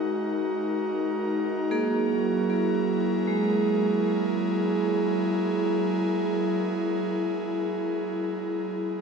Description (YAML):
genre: ambient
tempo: free time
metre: none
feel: none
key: unclear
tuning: A4 = 444 Hz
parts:
  - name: airy breathy pad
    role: sustained chords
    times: 0.0-9.0 s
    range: F#3 to A#4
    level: -25 LUFS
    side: equal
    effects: chorus
  - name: vibraphone with hard mallets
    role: arpeggios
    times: 1.7-9.0 s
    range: G#3 to G#4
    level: -28 LUFS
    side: right 3 dB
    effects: ping-pong delay
room: wet cathedral reverb, RT60 5.4 s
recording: dark, warm production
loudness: -24 LUFS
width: side -5 dB against mid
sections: 0.0-9.0 A section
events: fade-out 5.9-9.0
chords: 0.0 G#7(no3); 1.7 F#9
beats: free time